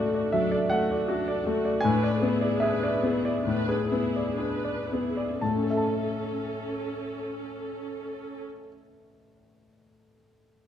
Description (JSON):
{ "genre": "classical, romantic movement for piano and orchestra", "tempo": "53-82 BPM", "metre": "4/4", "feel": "rubato", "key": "A major", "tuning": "A4 = 440 Hz", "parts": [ { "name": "clear grand piano", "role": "melody", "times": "0.0-10.7 s", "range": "A2 to A5", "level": "-25 LUFS", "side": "left 2 dB", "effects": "none" }, { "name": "warm studio viola section", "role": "accompaniment", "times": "0.0-8.4 s", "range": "A3 to B4", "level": "-32 LUFS", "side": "right 2 dB", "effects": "none" } ], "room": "moderate scoring stage reverb, RT60 1.8 s", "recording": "close, detailed microphones", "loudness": "-25 LUFS", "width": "side -9 dB against mid", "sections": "0.0-5.4 A section; 5.4-9.1 B section", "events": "slowing down 0.0-5.4", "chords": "0.0 D/A; 1.8 E7/A; 5.4 A", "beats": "0.32 1.07 | 1.81 2.58 3.43 4.36 | 5.40 6.32 7.26 8.19" }